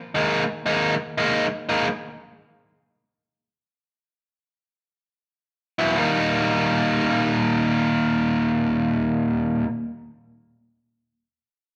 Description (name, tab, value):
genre	blues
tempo	free time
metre	none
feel	none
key	Eb major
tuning	A4 = 440 Hz
part	biting overdriven guitar	solo	0.1-1.9, 5.8-9.7 s	Eb2 to E4	-22 LUFS	equal	none
room	wet large studio reverb, RT60 1.4 s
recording	band playing live in one room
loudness	-22 LUFS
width	mono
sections	0.0-6.0 A section; 6.0-10.1 B section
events	stop 1.9-5.5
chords	0.0 Absus2; 1.9 N.C.; 5.5 Esus2; 6.0 Eb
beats	free time